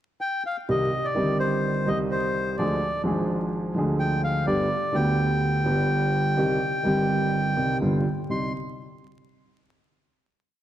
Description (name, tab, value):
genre	tango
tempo	126 BPM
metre	4/4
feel	rubato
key	C harmonic minor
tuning	A4 = 439 Hz
part	bandoneon	melody	0.2-8.5 s	C5 to C6	-27 LUFS	left 1 dB	none
part	dark grand piano	accompaniment	0.7-8.5 s	G1 to Ab4	-23 LUFS	right 1 dB	none
room	wet concert hall reverb, RT60 1.6 s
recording	dark, warm production, vinyl crackle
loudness	-22 LUFS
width	side -12 dB against mid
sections	0.0-0.7 pickup bar; 0.7-8.3 A section; 8.3-10.2 final chord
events	none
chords	0.0 N.C.; 0.7 Cm; 2.6 Ddim; 4.5 G; 6.4 Cm; 7.8 G7; 8.3 Cm